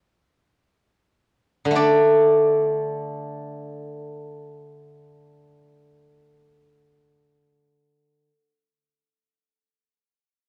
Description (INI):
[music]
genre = chinese traditional, Chinese solo plucked strings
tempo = free time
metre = none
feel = none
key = unclear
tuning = A4 = 439 Hz
[part]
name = steel-string zither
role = solo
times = 1.6-8.3 s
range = D3 to D5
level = -21 LUFS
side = equal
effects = none
[sound]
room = light reverb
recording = worn, warbling old tape, cassette tape, warbly pitch drift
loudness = -19 LUFS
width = mono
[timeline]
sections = 0.0-1.8 A section; 1.8-8.2 B section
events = none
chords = none